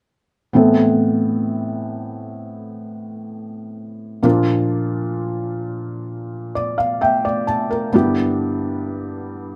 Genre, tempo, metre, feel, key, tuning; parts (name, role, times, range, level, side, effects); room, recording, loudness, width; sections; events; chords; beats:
pop; 65 BPM; 4/4; straight; A minor; A4 = 439 Hz
felt-muted upright piano; accompaniment; 0.5-9.6 s; G2 to A5; -21 LUFS; equal
moderate studio ambience, RT60 0.5 s; band playing live in one room; -19 LUFS; mono
0.6-9.6 A section
felt piano fill 6.1-7.9
0.6 Amadd9; 4.2 Bb; 7.9 G6
| 0.55 1.47 2.40 3.32 | 4.24 5.17 6.09 7.01 | 7.94 8.86